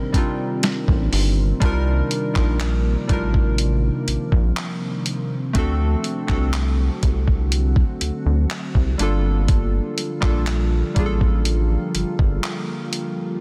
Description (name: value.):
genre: contemporary R&B.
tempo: 61 BPM.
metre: 4/4.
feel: straight.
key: C dorian.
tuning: A4 = 440 Hz.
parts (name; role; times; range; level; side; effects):
warm analog keys; accompaniment; 0.0-13.4 s; G3 to Bb4; -29 LUFS; equal; chorus.
glassy FM pad; sustained chords; 0.0-13.4 s; C3 to D5; -31 LUFS; equal; ensemble chorus, built-in reverb.
dusty soul sampler-style drum kit; drums; 0.1-13.2 s; handclaps, hi-hat, kick drum, snare drum; -24 LUFS; equal; soft clipping on snare.
rubbery square bass; bass; 0.9-12.4 s; G1 to D2; -22 LUFS; equal; none.
room: light reverb.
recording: dense, heavily limited modern master.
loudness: -21 LUFS.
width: mono.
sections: 0.0-1.6 A section; 1.6-13.4 B section.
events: none.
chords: 0.0 Cm9; 1.6 Cm11; 5.6 D7; 9.0 Gm7.